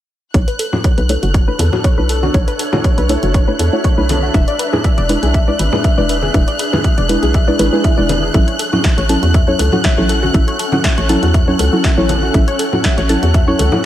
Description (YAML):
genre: deep house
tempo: 120 BPM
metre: 4/4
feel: swing 54% on 16ths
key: A major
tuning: A4 = 441 Hz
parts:
  - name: warbly dusty pluck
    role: arpeggios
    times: 0.3-13.8 s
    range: F#4 to A5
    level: -21 LUFS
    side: left 3 dB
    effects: chorus, sidechain pumping, analog delay
  - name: deep mellow chord stab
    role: stabs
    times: 0.3-13.8 s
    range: F#3 to C#5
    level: -19 LUFS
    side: right 1 dB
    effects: chorus, analog delay
  - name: hollow knocking FM bass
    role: bass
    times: 0.3-13.7 s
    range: E1 to E2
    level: -17 LUFS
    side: equal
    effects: sidechain pumping
  - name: electronic kick drum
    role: drums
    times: 0.3-13.5 s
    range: none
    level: -14 LUFS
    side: equal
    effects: none
  - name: punchy analog drum machine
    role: drums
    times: 0.3-13.7 s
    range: hi-hat, snare drum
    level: -23 LUFS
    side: equal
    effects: none
  - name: ethereal airy pad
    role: texture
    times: 1.2-13.9 s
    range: C#4 to F#5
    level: -24 LUFS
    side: equal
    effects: ensemble chorus, built-in reverb, sidechain pumping
  - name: warm studio violin section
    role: texture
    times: 0.3-13.9 s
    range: F#6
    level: -23 LUFS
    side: equal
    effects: sidechain pumping
  - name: congas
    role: percussion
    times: 0.7-13.8 s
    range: none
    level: -23 LUFS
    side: left 1 dB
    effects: none
room: moderate lush hall reverb, RT60 1.7 s, digital ambience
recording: dreamy mix soaked in reverb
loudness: -12 LUFS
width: side -12 dB against mid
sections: 0.3-13.9 A section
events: filter sweep on synth stab 0.3-13.9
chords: 0.3 Bm11; 4.3 E7; 8.3 A6